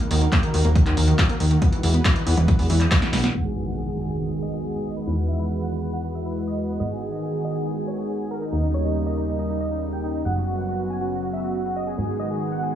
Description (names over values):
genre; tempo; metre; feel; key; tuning
uplifting trance; 139 BPM; 4/4; straight; G# minor; A4 = 440 Hz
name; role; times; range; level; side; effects
lush unison pad; sustained chords; 0.0-12.8 s; C#3 to B4; -27 LUFS; equal; chorus, sidechain pumping
wide unison pluck; arpeggios; 0.0-3.3 s; D#3 to B3; -27 LUFS; left 2 dB; sidechain pumping, dub echo
punchy analog drum machine; drums; 0.0-3.4 s; crash cymbal, handclaps, hi-hat, snare drum; -26 LUFS; equal; low-pass filter on hats, low-pass filter on snare, low-pass filter on cymbals, low-pass filter on room
plucky analog bass; bass; 0.1-12.8 s; D#1 to E2; -24 LUFS; equal; sidechain pumping
electronic kick drum; drums; 0.3-3.0 s; none; -20 LUFS; equal; none
supersaw chords; melody; 3.3-12.7 s; D#4 to G#5; -30 LUFS; right 1 dB; sidechain pumping, low-pass filter, tape echo
impact; sound effects; 3.3-5.1 s; none; -32 LUFS; equal; none
room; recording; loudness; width
light reverb; low-pass filter, small room ambience; -21 LUFS; side -10 dB against mid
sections
0.0-3.3 A section; 3.3-12.8 B section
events
drum fill 2.9-3.3; impact 3.3-5.1; filter sweep 3.3-12.8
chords
0.0 D#m; 1.6 Eadd9; 3.3 G#m7; 5.1 Eadd9; 6.8 G#m7; 8.5 D#7; 10.3 F#sus4; 12.0 G#m7